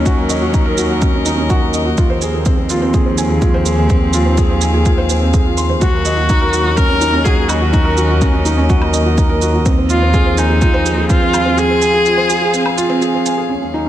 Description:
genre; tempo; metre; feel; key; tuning
piano and strings electronica; 125 BPM; 4/4; straight; unclear; A4 = 440 Hz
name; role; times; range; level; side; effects
rich string quartet; sustained chords; 0.0-13.9 s; F3 to F5; -22 LUFS; left 1 dB; sidechain pumping
felt-muted upright piano; riff; 0.0-13.9 s; C4 to C6; -18 LUFS; right 1 dB; ping-pong delay
rich studio double bass section; bass; 0.0-13.9 s; Eb2; -17 LUFS; equal; sidechain pumping
electronic kick drum; drums; 0.1-11.2 s; none; -15 LUFS; equal; overdrive
shaker and woodblock; drums; 0.1-13.4 s; none; -25 LUFS; right 5 dB; none
clear viola; melody; 5.8-13.0 s; Eb4 to Bb4; -16 LUFS; equal; ping-pong delay
room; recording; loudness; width
light reverb; none; -12 LUFS; side -12 dB against mid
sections
0.0-13.5 A section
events
none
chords
0.0 Ebm7; 2.0 Fm/Eb; 5.8 Ebm7; 9.7 Fm/Eb

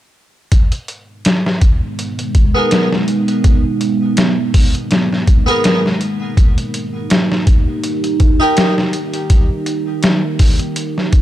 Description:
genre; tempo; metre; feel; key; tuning
trip hop; 82 BPM; 4/4; swing 55% on 16ths; G# harmonic minor; A4 = 437 Hz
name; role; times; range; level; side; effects
deep dark ambient pad; sustained chords; 1.5-11.2 s; G#3 to A#4; -19 LUFS; right 2 dB; chorus, built-in reverb, vintage 12-bit sampler grit
trip hop sampler-style drum kit; drums; 0.5-11.2 s; hi-hat, kick drum, snare drum; -12 LUFS; equal; none
harpsichord; accompaniment; 2.5-8.7 s; B3 to A#4; -18 LUFS; equal; harmonic tremolo, low-pass filter, tape echo
room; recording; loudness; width
little or no reverb; dark, warm production; -12 LUFS; side -13 dB against mid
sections
0.5-11.2 A section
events
filter sweep on harpsichord 0.5-11.2; filter sweep on ambient pad 0.5-11.2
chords
0.5 G#madd9; 6.4 D#

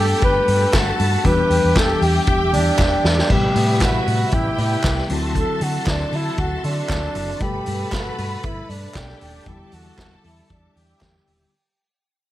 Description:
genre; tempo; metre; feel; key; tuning
disco; 117 BPM; 4/4; straight; unclear; A4 = 440 Hz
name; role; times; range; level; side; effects
breathy flugelhorn; melody; 0.0-11.2 s; D4 to B4; -22 LUFS; equal; none
clear symphonic string section; second line; 0.0-11.5 s; E4 to B5; -27 LUFS; equal; tape echo
tine electric piano; accompaniment; 0.0-11.6 s; B2 to A4; -27 LUFS; left 2 dB; fast stereo tremolo
bright tonewheel organ; sustained chords; 0.0-11.5 s; G3 to D6; -30 LUFS; equal; overdrive, chorus vibrato, slow rotary speaker
hollow-body short-scale fingered electric bass; bass; 0.0-11.4 s; D#1 to D3; -22 LUFS; equal; none
vintage drum kit; drums; 0.2-11.4 s; crash cymbal, hi-hat, kick drum, snare drum; -23 LUFS; equal; none
group handclap; percussion; 0.7-11.1 s; none; -30 LUFS; right 2 dB; none
room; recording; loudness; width
small room reverb; none; -16 LUFS; side -14 dB against mid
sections
0.0-3.3 A section; 3.3-11.5 B section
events
drum fill 2.8-3.3; fade-out 3.3-11.5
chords
0.0 Gmaj9; 1.2 Em7; 3.3 Am9; 5.1 D9; 7.4 Gmaj9; 9.5 Em7

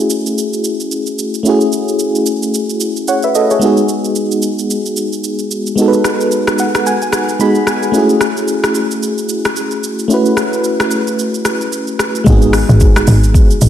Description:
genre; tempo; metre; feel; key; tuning
amapiano; 111 BPM; 4/4; swing 58% on 16ths; G# phrygian; A4 = 440 Hz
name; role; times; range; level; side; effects
FM electric piano with tremolo; accompaniment; 0.0-13.7 s; G#3 to B5; -14 LUFS; equal; none
afro-pop drum kit; drums; 0.1-13.7 s; hi-hat, kick drum, rim click, shaker; -17 LUFS; equal; none
woody log drum bass; bass; 12.3-13.7 s; G#1; -10 LUFS; equal; none
room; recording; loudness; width
moderate lush hall reverb, RT60 1.7 s; dreamy mix soaked in reverb; -12 LUFS; side -10 dB against mid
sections
0.0-12.3 A section; 12.3-13.7 B section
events
FM electric piano fill 6.3-7.9; drop 12.3-13.7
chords
0.0 F#m7; 3.6 G#m7; 7.9 F#m7; 12.3 G#m7

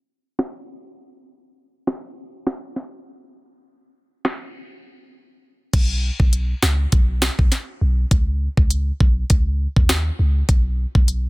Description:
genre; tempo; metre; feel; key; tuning
dancehall; 101 BPM; 4/4; swing 56% on 16ths; B major; A4 = 441 Hz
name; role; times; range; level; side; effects
afro-pop drum kit; drums; 0.4-11.2 s; crash cymbal, hi-hat, kick drum, rim click, snare drum; -18 LUFS; equal; none
clean 808-style bass; bass; 5.7-11.3 s; B1 to D#2; -20 LUFS; equal; none
room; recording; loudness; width
little or no reverb; dense, heavily limited modern master, low-pass filter; -17 LUFS; side -24 dB against mid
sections
0.0-5.7 A section; 5.7-11.3 B section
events
filter sweep 0.0-5.7; break 4.5-5.7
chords
none

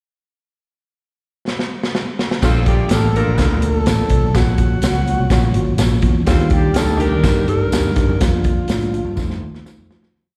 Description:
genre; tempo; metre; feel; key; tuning
uptempo 1960s-style soul; 125 BPM; 4/4; straight; Bb major; A4 = 440 Hz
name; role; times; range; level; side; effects
crunchy breakbeat drum kit; drums; 1.5-10.1 s; crash cymbal, hi-hat, kick drum, snare drum; -20 LUFS; equal; none
breathy tenor saxophone; melody; 2.4-9.7 s; F4 to Bb4; -25 LUFS; equal; none
clear horn section; second line; 2.4-7.4 s; Eb3 to D5; -29 LUFS; equal; slapback echo
tine electric piano; accompaniment; 2.4-10.1 s; A3 to A4; -27 LUFS; equal; overdrive, slapback echo
mellow tonewheel organ; sustained chords; 2.4-10.1 s; D3 to D4; -31 LUFS; equal; none
vintage muted picked electric bass; bass; 2.4-10.1 s; Ab1 to F3; -20 LUFS; equal; none
tambourine; percussion; 2.4-9.8 s; none; -38 LUFS; equal; none
congas; percussion; 6.8-10.1 s; none; -33 LUFS; equal; none
room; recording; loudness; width
little or no reverb; live gig heard through the venue's PA, recital hall reverb; -17 LUFS; mono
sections
0.5-2.4 pickup bar; 2.4-10.1 verse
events
drum fill 1.5-2.4, 9.2-10.1; fade-out 8.2-10.1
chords
0.5 N.C.; 2.4 Bbmaj7; 4.3 Gbmaj7/Bb; 6.3 Ebmaj7; 8.2 Bb/F; 9.2 F7

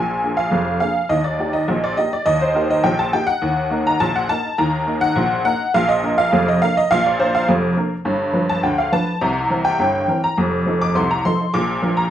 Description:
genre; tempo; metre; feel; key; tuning
ragtime piano; 103 BPM; 2/4; straight; Bb major; A4 = 439 Hz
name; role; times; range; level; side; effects
honky-tonk upright piano; solo; 0.0-12.1 s; F1 to D6; -16 LUFS; equal; none
room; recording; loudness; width
wet small room reverb, RT60 0.6 s; band playing live in one room; -16 LUFS; side -10 dB against mid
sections
0.0-12.1 A section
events
none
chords
0.0 Bb7; 1.1 Eb; 3.4 Eb5; 5.7 Bb; 8.1 G7; 9.2 C7; 10.4 F7; 11.5 Bb

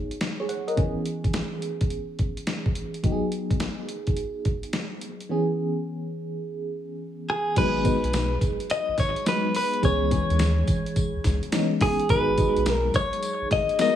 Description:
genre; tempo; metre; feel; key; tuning
R&B, new jack swing; 106 BPM; 4/4; swing 66% on 16ths; G# minor; A4 = 439 Hz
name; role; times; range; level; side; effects
FM electric piano with tremolo; accompaniment; 0.0-14.0 s; D#3 to F#5; -27 LUFS; equal; phaser
dusty soul sampler-style drum kit; drums; 0.1-14.0 s; crash cymbal, hi-hat, kick drum, snare drum, tambourine; -27 LUFS; equal; gated reverb
direct-recorded clean electric guitar; melody; 7.3-14.0 s; G#4 to D#5; -25 LUFS; left 1 dB; digital delay
round analog bass; bass; 7.6-13.7 s; G#1 to D#2; -26 LUFS; equal; none
room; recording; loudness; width
digital ambience; small room ambience; -23 LUFS; side -10 dB against mid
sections
0.0-7.6 A section; 7.6-14.0 B section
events
none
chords
0.0 G#m7; 0.8 C#m7; 3.0 G#m7; 5.3 C#m7; 7.6 G#m7; 9.8 C#m7; 12.1 G#m7

